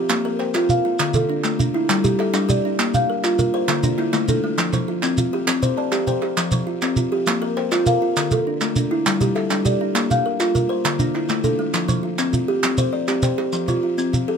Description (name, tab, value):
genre	southern african traditional, mbira-style interlocking cycle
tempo	134 BPM (dotted quarters)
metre	12/8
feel	straight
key	F major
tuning	A4 = 440 Hz
part	buzzing kalimba	arpeggios	0.0-14.4 s	D3 to D5	-21 LUFS	left 2 dB	none
part	kalimba	arpeggios	0.0-14.4 s	D3 to A5	-24 LUFS	right 4 dB	none
part	group handclap	percussion	0.1-13.5 s	none	-24 LUFS	right 4 dB	none
part	shekere	percussion	0.1-14.3 s	none	-23 LUFS	right 2 dB	none
room	moderate studio ambience, RT60 0.5 s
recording	none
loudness	-18 LUFS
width	side -6 dB against mid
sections	0.0-13.5 A section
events	none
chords	0.1 Bb5; 1.0 Dm; 1.9 G5; 2.8 Bb; 3.7 D5; 4.6 F; 6.4 F5; 7.3 Bb5; 8.2 Dm; 9.1 G5; 10.0 Bb; 10.8 D5; 11.7 F; 12.6 C5; 13.5 F5